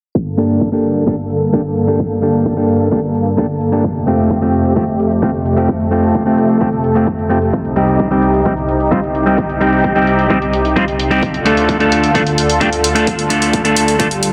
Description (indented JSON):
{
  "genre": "EDM, festival progressive house",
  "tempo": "130 BPM",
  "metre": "4/4",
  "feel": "straight",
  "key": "G minor",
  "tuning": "A4 = 440 Hz",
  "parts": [
    { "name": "lush unison pad", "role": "sustained chords", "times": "0.1-14.3 s", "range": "C2 to A4", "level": "-18 LUFS", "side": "equal", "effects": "chorus, sidechain pumping" },
    { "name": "electronic hi-hat", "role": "drums", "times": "0.1-14.3 s", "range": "none", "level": "-23 LUFS", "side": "equal", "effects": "low-pass filter on hats" },
    { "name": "electronic kick drum", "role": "drums", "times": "0.1-14.1 s", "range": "none", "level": "-22 LUFS", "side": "equal", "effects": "high-pass filter on kick" },
    { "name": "clean electric guitar", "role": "accompaniment", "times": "0.4-14.1 s", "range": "G3 to A4", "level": "-17 LUFS", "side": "equal", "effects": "sidechain pumping, delay" },
    { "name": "swell", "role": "sound effects", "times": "14.1-14.3 s", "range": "none", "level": "-22 LUFS", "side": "equal", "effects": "none" }
  ],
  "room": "wet lush hall reverb, RT60 1.9 s, digital ambience",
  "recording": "dense, heavily limited modern master, low-pass filter",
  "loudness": "-14 LUFS",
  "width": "mono",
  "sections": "0.1-14.3 A section",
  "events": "filter sweep on drum 0.1-14.3; filter sweep 0.1-14.3; swell 14.1",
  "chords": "0.1 Gmadd9; 3.8 Fadd9; 7.5 Cm; 11.2 Dm"
}